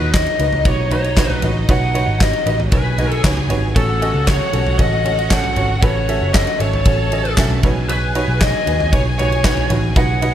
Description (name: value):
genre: piano-driven pop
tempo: 116 BPM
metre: 4/4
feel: straight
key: B mixolydian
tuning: A4 = 440 Hz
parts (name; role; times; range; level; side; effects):
- lead guitar through a small cranked amp; melody; 0.0-10.3 s; A4 to F#5; -21 LUFS; left 1 dB; overdrive
- rich studio violin section; second line; 0.0-10.3 s; D#4 to A5; -27 LUFS; left 1 dB; digital delay
- clear upright piano; accompaniment; 0.0-10.3 s; A2 to E5; -23 LUFS; right 3 dB; none
- vintage muted picked electric bass; bass; 0.0-10.3 s; F#1 to D#2; -20 LUFS; equal; none
- huge arena drum kit; drums; 0.1-10.3 s; handclaps, kick drum, ride cymbal, snare drum, toms; -18 LUFS; equal; none
room: light reverb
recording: none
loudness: -14 LUFS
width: side -10 dB against mid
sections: 0.0-10.3 A section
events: none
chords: 0.0 Badd9; 3.8 F#m; 7.6 Badd9